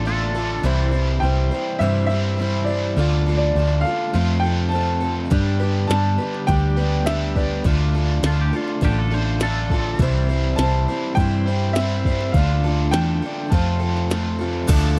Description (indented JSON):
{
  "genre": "folk rock and heartland rock",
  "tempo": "102 BPM",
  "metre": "4/4",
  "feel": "straight",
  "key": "D dorian",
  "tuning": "A4 = 440 Hz",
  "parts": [
    { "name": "twangy electric guitar", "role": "second line", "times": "0.0-1.1, 8.3-10.4 s", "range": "F4 to C5", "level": "-32 LUFS", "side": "equal", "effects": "analog chorus" },
    { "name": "picked steel-string acoustic guitar", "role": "accompaniment", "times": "0.0-15.0 s", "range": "C3 to C5", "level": "-29 LUFS", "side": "equal", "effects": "none" },
    { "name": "biting overdriven guitar", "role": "riff", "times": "0.0-15.0 s", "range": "F2 to A4", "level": "-29 LUFS", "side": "equal", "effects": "harmonic tremolo" },
    { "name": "hollow-body short-scale fingered electric bass", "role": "bass", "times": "0.0-15.0 s", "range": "A1 to G2", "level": "-23 LUFS", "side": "equal", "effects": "none" },
    { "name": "warm grand piano", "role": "melody", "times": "1.2-14.3 s", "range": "D5 to A5", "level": "-28 LUFS", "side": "equal", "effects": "none" },
    { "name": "minimal click drum kit", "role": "drums", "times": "5.3-14.8 s", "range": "crash cymbal, hi-hat, kick drum, ride cymbal, snare drum", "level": "-23 LUFS", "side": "equal", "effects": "none" },
    { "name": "tonewheel organ", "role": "sustained chords", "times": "14.7-15.0 s", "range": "F4 to E5", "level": "-35 LUFS", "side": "equal", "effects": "none" },
    { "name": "egg shaker", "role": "percussion", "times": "14.7-14.8 s", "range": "none", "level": "-35 LUFS", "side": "equal", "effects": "none" }
  ],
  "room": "little or no reverb",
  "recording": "dry, close 1970s-style studio recording",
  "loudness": "-20 LUFS",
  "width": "mono",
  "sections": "0.0-14.7 A section",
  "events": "none",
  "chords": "0.0 Dm; 0.6 C; 3.0 Dm; 4.1 F; 5.3 G; 7.7 Dm; 10.0 C; 12.3 Dm; 13.5 F",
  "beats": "0.05 | 0.64 1.22 1.81 2.39 | 2.98 3.56 4.14 4.73 | 5.31 5.90 6.48 7.07 | 7.65 8.24 8.82 9.41 | 9.99 10.58 11.17 11.75 | 12.34 12.93 13.51 14.10 | 14.69"
}